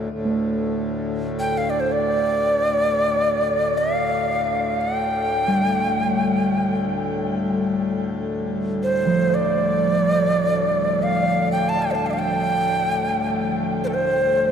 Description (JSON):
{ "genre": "world meditative, free-time meditation music", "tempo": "free time", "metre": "none", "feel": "none", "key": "D minor pentatonic", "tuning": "A4 = 440 Hz", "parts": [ { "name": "pedal harmonium", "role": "drone", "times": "0.0-14.5 s", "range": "D2 to A2", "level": "-26 LUFS", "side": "left 3 dB", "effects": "none" }, { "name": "quartz singing bowl", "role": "texture", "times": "0.0-14.5 s", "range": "F3 to D4", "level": "-25 LUFS", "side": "right 3 dB", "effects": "none" }, { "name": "breathy Native American-style cedar flute", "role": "melody", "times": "1.4-14.5 s", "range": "A4 to A5", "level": "-21 LUFS", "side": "equal", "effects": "shimmer reverb, tape echo" } ], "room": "wet huge ambient reverb, RT60 7.2 s", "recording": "dark, warm production", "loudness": "-19 LUFS", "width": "side -8 dB against mid", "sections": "0.1-14.5 A section", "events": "none", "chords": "none" }